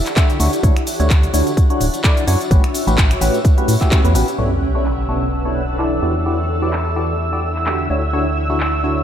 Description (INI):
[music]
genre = piano house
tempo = 128 BPM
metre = 4/4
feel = swing 55% on 16ths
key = B minor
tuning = A4 = 438 Hz
[part]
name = granular cloud pad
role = texture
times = 0.0-9.0 s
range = C#4 to F#5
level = -24 LUFS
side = equal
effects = built-in reverb, wide subtle chorus, sidechain pumping
[part]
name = house drum kit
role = drums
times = 0.1-9.0 s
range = cabasa, finger snaps, handclaps, hi-hat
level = -24 LUFS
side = equal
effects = low-pass filter on hats, low-pass filter on perc, low-pass filter on snare
[part]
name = tambourine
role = percussion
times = 0.1-4.4 s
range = none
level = -35 LUFS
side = left 3 dB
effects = none
[part]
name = barking FM electric piano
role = riff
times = 0.2-9.0 s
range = A2 to E5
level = -21 LUFS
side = left 1 dB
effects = phaser, sidechain pumping, low-pass filter, diffuse ambient delay
[part]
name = electronic kick drum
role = drums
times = 0.2-4.0 s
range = none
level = -14 LUFS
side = equal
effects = none
[part]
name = organ-like FM bass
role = bass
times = 0.4-9.0 s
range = D1 to A2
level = -19 LUFS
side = equal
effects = sidechain pumping
[part]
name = analog string pad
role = sustained chords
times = 4.4-9.0 s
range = E6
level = -26 LUFS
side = right 2 dB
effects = ensemble chorus, sidechain pumping
[part]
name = sub drop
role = sound effects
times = 4.4-6.3 s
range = none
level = -25 LUFS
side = equal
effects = none
[sound]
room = moderate lush hall reverb, RT60 1.9 s, digital ambience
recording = dreamy mix soaked in reverb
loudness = -14 LUFS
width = side -9 dB against mid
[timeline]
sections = 0.0-4.4 A section; 4.4-9.0 B section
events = impact 4.4-6.3; filter sweep on drum 4.4-9.0; filter sweep on FM electric piano 4.4-9.0; filter sweep on analog synth pad 4.4-9.0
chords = 0.4 Dmaj9; 2.5 A13; 4.4 Bm11; 6.0 Em9; 7.9 Dmaj9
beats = 0.17 | 0.64 1.10 1.57 2.04 | 2.51 2.98 3.45 3.92 | 4.38 4.85 5.32 5.79 | 6.26 6.73 7.20 7.67 | 8.13 8.60